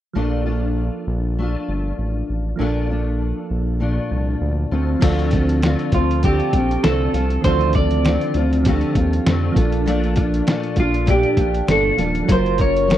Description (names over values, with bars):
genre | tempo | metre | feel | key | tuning
indie pop, bedroom pop | 99 BPM | 4/4 | swing 55% on 16ths | Bb major | A4 = 440 Hz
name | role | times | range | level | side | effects
fingerpicked steel-string acoustic guitar | accompaniment | 0.1-13.0 s | Bb2 to Bb4 | -23 LUFS | left 4 dB | ensemble chorus, warbly pitch drift
soft electric-piano-like synth keys | accompaniment | 0.1-13.0 s | Eb3 to Bb4 | -26 LUFS | right 6 dB | chorus, cassette tape
round analog bass | bass | 0.2-13.0 s | Eb1 to F2 | -21 LUFS | equal | none
lo-fi sampler-style drum kit | drums | 5.0-13.0 s | crash cymbal, hi-hat, kick drum, snare drum | -20 LUFS | equal | overdrive
electric guitar through a small old amp | melody | 5.9-13.0 s | F4 to D5 | -20 LUFS | right 2 dB | wide subtle chorus, slapback echo
room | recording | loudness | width
little or no reverb | dry, close 1970s-style studio recording | -16 LUFS | side -12 dB against mid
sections
0.2-5.0 A section; 5.0-13.0 B section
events
none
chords
0.2 Bbmaj7; 4.7 Dm7; 9.6 Bbmaj7; 12.3 Gbmaj7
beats
| 0.17 0.78 1.38 1.99 | 2.60 3.20 3.81 4.42 | 5.02 5.63 6.23 6.84 | 7.45 8.05 8.66 9.26 | 9.87 10.47 11.08 11.68 | 12.29 12.89